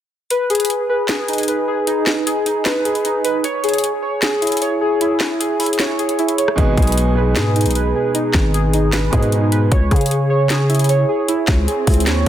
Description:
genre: hip hop, trap.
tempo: 153 BPM.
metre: 4/4.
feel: half-time.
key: G# minor.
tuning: A4 = 440 Hz.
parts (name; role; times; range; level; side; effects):
warbly lo-fi synth keys; arpeggios; 0.3-12.3 s; D#4 to C#5; -18 LUFS; equal; chorus, low-pass filter, tape echo.
trap drum kit; drums; 0.3-12.2 s; handclaps, hi-hat, kick drum, rim click, snare drum; -19 LUFS; equal; none.
dark concert grand piano; accompaniment; 6.6-9.7 s; B2 to G#4; -21 LUFS; right 3 dB; low-pass filter.
growling 808-style bass; bass; 6.6-12.3 s; G#1 to C#3; -17 LUFS; equal; none.
swell; sound effects; 11.6-12.3 s; none; -26 LUFS; right 6 dB; none.
room: light reverb.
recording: dense, heavily limited modern master.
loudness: -15 LUFS.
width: side -11 dB against mid.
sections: 0.3-12.3 A section.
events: kick muted 0.3-6.6; swell 11.6-12.3.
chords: 0.3 G#m; 3.4 C#m; 6.6 G#m; 9.7 C#m.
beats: | 0.30 0.70 1.09 1.48 | 1.87 2.27 2.66 3.05 | 3.44 3.83 4.23 4.62 | 5.01 5.40 5.79 6.19 | 6.58 6.97 7.36 7.75 | 8.15 8.54 8.93 9.32 | 9.72 10.11 10.50 10.89 | 11.29 11.68 12.07.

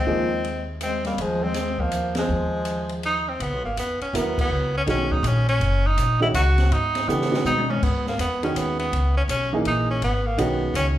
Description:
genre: modal jazz.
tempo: 163 BPM.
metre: 3/4.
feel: swing 64% on 8ths.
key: C# dorian from 3.4 s.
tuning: A4 = 440 Hz.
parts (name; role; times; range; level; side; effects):
clear tenor saxophone; melody; 0.0-10.9 s; Ab3 to F#4; -25 LUFS; right 1 dB; none.
warm bass clarinet; second line; 0.0-3.2 s; F3 to Ab3; -27 LUFS; left 2 dB; none.
upright bass; bass; 0.0-11.0 s; F#1 to C#3; -25 LUFS; equal; none.
warm upright piano; accompaniment; 0.1-0.3, 4.1-10.9 s; D#3 to A#4; -26 LUFS; right 2 dB; none.
open jazz drum kit; drums; 0.4-10.9 s; crash cymbal, hi-hat, kick drum, ride cymbal, snare drum, toms; -30 LUFS; equal; none.
room: wet large studio reverb, RT60 0.8 s.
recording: band playing live in one room.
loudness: -20 LUFS.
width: side -12 dB against mid.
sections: 0.0-3.4 A section; 3.4-11.0 B section.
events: band accent 2.1, 4.3; drum fill 7.1-7.8.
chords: 0.0 Ebsus24; 3.4 C#13sus4.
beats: | 0.07 0.44 0.81 | 1.18 1.55 1.92 | 2.29 2.66 3.03 | 3.40 3.77 4.13 | 4.50 4.87 5.24 | 5.61 5.98 6.34 | 6.71 7.08 7.45 | 7.82 8.18 8.55 | 8.92 9.29 9.65 | 10.02 10.39 10.76.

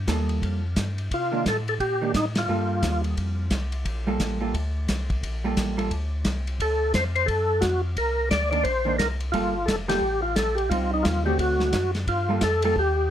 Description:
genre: soul jazz organ trio.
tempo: 175 BPM.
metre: 4/4.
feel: swing 62% on 8ths.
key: G minor.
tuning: A4 = 438 Hz.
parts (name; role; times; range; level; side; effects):
tonewheel organ; bass; 0.0-13.1 s; F1 to C3; -28 LUFS; equal; chorus vibrato, slow rotary speaker.
vintage hollow-body jazz guitar; accompaniment; 0.1-5.9, 8.5-12.8 s; D3 to A4; -28 LUFS; right 3 dB; none.
warm soul drum kit; drums; 0.1-12.9 s; hi-hat, kick drum, ride cymbal, snare drum; -29 LUFS; equal; none.
percussive tonewheel organ; melody; 1.1-3.0, 6.6-13.1 s; Eb4 to D5; -24 LUFS; equal; slow rotary speaker, overdrive, chorus vibrato.
room: light reverb.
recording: none.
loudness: -22 LUFS.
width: side -10 dB against mid.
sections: 0.0-12.1 A section; 12.1-13.1 A section.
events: band accent 2.3, 9.8.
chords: 0.0 Gm9; 1.1 Cm9; 2.5 Gm9; 6.6 D; 8.0 Cm9; 9.3 Gm9; 10.7 Am7b5; 11.4 D7; 12.1 Gm9.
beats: 0.08 0.42 0.77 | 1.11 1.45 1.80 2.14 | 2.48 2.83 3.17 3.51 | 3.85 4.20 4.54 4.88 | 5.23 5.57 5.91 6.25 | 6.60 6.94 7.28 7.62 | 7.97 8.31 8.65 8.99 | 9.33 9.68 10.02 10.36 | 10.70 11.04 11.39 11.73 | 12.07 12.41 12.76.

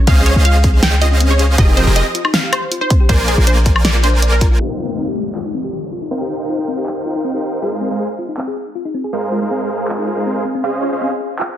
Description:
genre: future bass.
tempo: 159 BPM.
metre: 4/4.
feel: half-time.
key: Eb mixolydian.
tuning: A4 = 439 Hz.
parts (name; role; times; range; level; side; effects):
wide unison pluck; melody; 0.0-4.6, 10.6-11.6 s; Ab4 to G5; -21 LUFS; right 2 dB; sidechain pumping, digital delay.
thumb-piano-like synth pluck; arpeggios; 0.0-11.6 s; C4 to D5; -24 LUFS; left 3 dB; chorus, sidechain pumping, digital delay.
supersaw chords; riff; 0.1-11.1 s; F3 to Ab5; -20 LUFS; right 1 dB; sidechain pumping, low-pass filter.
warm 808-style bass; bass; 0.1-4.6 s; F1 to Db2; -13 LUFS; equal; sidechain pumping.
big-room dance drum kit; drums; 0.1-11.5 s; handclaps, hi-hat, snare drum, woodblock; -19 LUFS; equal; none.
electronic kick drum; drums; 0.1-4.5 s; none; -13 LUFS; equal; none.
downlifter; sound effects; 4.6-7.6 s; none; -26 LUFS; left 4 dB; none.
room: light reverb.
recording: dense, heavily limited modern master, low-pass filter.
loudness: -14 LUFS.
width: side -11 dB against mid.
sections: 0.0-4.6 A section; 4.6-11.6 B section.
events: drop 0.0-4.6; filter sweep on supersaw synth 4.6-11.6; filter sweep on synth arpeggio sound 4.6-11.6.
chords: 0.0 Dbmaj7; 1.6 Fm11; 3.1 Bb7; 4.6 Eb69; 7.6 Ab6; 10.5 Dbmaj7.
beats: | 0.07 0.45 0.83 1.21 | 1.58 1.96 2.34 2.71 | 3.09 3.47 3.85 4.22 | 4.60 4.98 5.36 5.73 | 6.11 6.49 6.87 7.24 | 7.62 8.00 8.38 8.75 | 9.13 9.51 9.88 10.26 | 10.64 11.02 11.39.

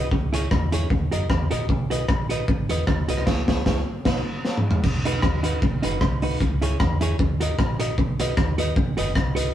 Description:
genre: ska.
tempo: 153 BPM.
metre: 4/4.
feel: swing 54% on 8ths.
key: B major.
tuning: A4 = 440 Hz.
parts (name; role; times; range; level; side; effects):
clean electric guitar; accompaniment; 0.0-9.5 s; D#4 to D#5; -28 LUFS; right 2 dB; none.
deep dub fingered electric bass; bass; 0.0-9.5 s; F#1 to F#2; -26 LUFS; left 1 dB; none.
crunchy breakbeat drum kit; drums; 0.1-9.4 s; crash cymbal, hi-hat, kick drum, rim click, snare drum, toms; -22 LUFS; equal; none.
room: light reverb.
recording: band playing live in one room.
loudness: -20 LUFS.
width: side -11 dB against mid.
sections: 0.0-4.8 A section; 4.8-9.5 B section.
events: band accent 3.3-4.8; drum fill 4.4-4.8.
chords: 0.1 C#m; 0.9 D#m; 1.7 B; 3.3 C#m; 4.1 B; 6.4 C#m; 7.2 D#m; 8.0 B.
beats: | 0.12 0.51 0.90 1.30 | 1.69 2.08 2.48 2.87 | 3.27 3.66 4.05 4.45 | 4.84 5.23 5.62 6.02 | 6.41 6.80 7.19 7.59 | 7.98 8.37 8.76 9.16.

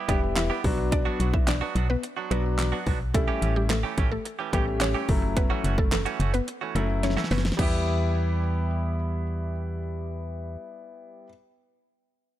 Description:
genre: dance-pop.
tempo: 108 BPM.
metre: 4/4.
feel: straight.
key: E dorian.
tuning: A4 = 441 Hz.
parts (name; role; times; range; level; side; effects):
direct-recorded clean electric guitar; riff; 0.0-11.3 s; E3 to G4; -34 LUFS; right 8 dB; wide subtle chorus.
mallet-like synth pluck; melody; 0.1-9.2 s; G3 to E5; -33 LUFS; equal; chorus, sidechain pumping, ping-pong delay.
warm concert grand piano; accompaniment; 0.1-11.3 s; F#3 to G4; -31 LUFS; left 3 dB; sidechain pumping.
organ-like FM bass; bass; 0.1-10.6 s; E1 to E2; -27 LUFS; equal; sidechain pumping.
pop drum kit; drums; 0.1-7.7 s; crash cymbal, handclaps, hi-hat, kick drum, snare drum; -27 LUFS; equal; none.
room: little or no reverb.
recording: none.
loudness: -23 LUFS.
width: side -13 dB against mid.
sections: 0.0-7.6 A section; 7.6-9.8 B section.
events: drop 0.0-7.6; drum fill 7.0-7.6.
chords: 0.0 Em; 0.6 Bm; 3.1 A7; 5.1 F#m7; 7.6 Em.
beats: 0.37 | 0.92 1.48 2.03 2.59 | 3.14 3.70 4.25 4.81 | 5.37 5.92 6.48 7.03 | 7.59 8.14 8.70 9.25.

